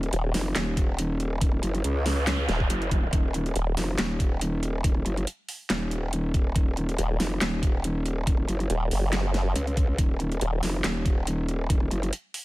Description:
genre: heavy wobble dubstep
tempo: 140 BPM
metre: 4/4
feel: swing 55% on 16ths, half-time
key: Eb minor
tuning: A4 = 440 Hz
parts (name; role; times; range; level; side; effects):
- growl bass; bass; 0.0-12.1 s; Eb1 to Db2; -27 LUFS; equal; chorus, overdrive
- dubstep drum kit; drums; 0.0-12.4 s; handclaps, hi-hat, snare drum; -31 LUFS; equal; none
- formant-sweep wobble bass; bass; 0.1-3.8, 7.0-10.6 s; Eb1 to Gb1; -24 LUFS; equal; chorus, overdrive
- electronic kick drum; drums; 0.8-11.8 s; none; -24 LUFS; equal; overdrive
- noise sweep; sound effects; 1.8-3.1 s; none; -35 LUFS; right 3 dB; none
room: digital ambience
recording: none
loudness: -24 LUFS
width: side -18 dB against mid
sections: 0.0-12.4 A section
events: noise sweep 1.8-3.1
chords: 0.0 Ebm

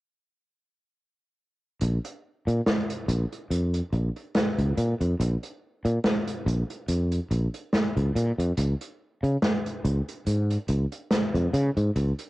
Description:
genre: vaporwave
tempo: 71 BPM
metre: 4/4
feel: swing 55% on 16ths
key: Bb minor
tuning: A4 = 440 Hz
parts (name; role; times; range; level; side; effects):
- sustaining fretless electric bass; bass; 1.8-12.1 s; Bb1 to Db3; -23 LUFS; equal; none
- unplugged drum kit; drums; 1.8-12.3 s; hi-hat, snare drum; -28 LUFS; equal; cassette tape
room: light reverb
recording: home recording on cassette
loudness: -24 LUFS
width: side -19 dB against mid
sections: 1.8-12.3 A section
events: none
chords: none

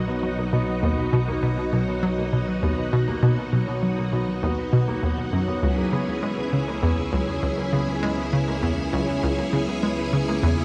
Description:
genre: ambient, sequencer-driven space music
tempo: 100 BPM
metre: 4/4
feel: straight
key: B major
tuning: A4 = 440 Hz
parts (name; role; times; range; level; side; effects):
- string machine, full ensemble; sustained chords; 0.0-10.6 s; C#4 to G#4; -30 LUFS; equal; ensemble chorus
- concert harp; arpeggios; 0.0-10.6 s; F#3 to B4; -31 LUFS; equal; analog delay
- hollow square pluck; riff; 0.0-10.5 s; C#2 to G#3; -26 LUFS; equal; chorus, analog delay
- analog drone; bass; 0.0-10.6 s; B1 to C#2; -36 LUFS; equal; chorus, tube saturation
room: moderate huge ambient reverb, RT60 7.3 s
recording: none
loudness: -24 LUFS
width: mono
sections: 0.0-10.6 A section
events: none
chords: 0.0 B; 5.6 C#m

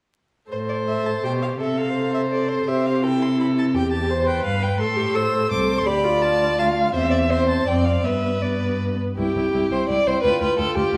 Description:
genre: quick classical-period movement for string quartet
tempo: 168 BPM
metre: 3/4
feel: rubato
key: A minor, C major from 4.8 s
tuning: A4 = 440 Hz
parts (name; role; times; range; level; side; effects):
- rich violin; melody; 0.5-11.0 s; C5 to E6; -31 LUFS; equal; none
- warm violin; second line; 0.5-11.0 s; G4 to F5; -26 LUFS; equal; none
- warm viola; accompaniment; 0.5-11.0 s; B3 to C5; -28 LUFS; equal; none
- rich cello; bass; 0.5-11.0 s; C2 to C3; -26 LUFS; equal; none
room: wet recital hall reverb, RT60 1.7 s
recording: vinyl crackle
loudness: -21 LUFS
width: mono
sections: 0.5-9.2 A section; 9.2-11.0 B section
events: none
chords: 0.5 Am; 1.6 Am/C; 2.7 C; 3.7 C/E; 4.8 Am; 5.9 Dm; 6.9 C/E; 7.7 Dm7/F; 8.0 G; 9.2 C; 10.2 G5/D

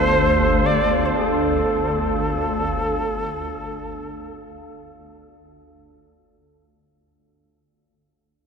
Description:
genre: dark ambient drone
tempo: free time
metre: none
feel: none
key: unclear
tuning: A4 = 440 Hz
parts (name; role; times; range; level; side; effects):
- breathy shakuhachi; melody; 0.0-6.0 s; A4 to D5; -22 LUFS; equal; ping-pong delay
- deep dark ambient pad; sustained chords; 0.0-7.0 s; D4 to F5; -25 LUFS; right 1 dB; chorus, built-in reverb
- swarming drone; drone; 0.0-7.1 s; G1 to D2; -24 LUFS; left 1 dB; built-in reverb
- bronze singing bowl; texture; 0.0-7.0 s; none; barely audible; none; none
room: wet huge ambient reverb, RT60 8.3 s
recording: dark, warm production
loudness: -18 LUFS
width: side -6 dB against mid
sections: 0.0-6.9 A section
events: fade-out 0.0-6.9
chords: 0.0 Dm

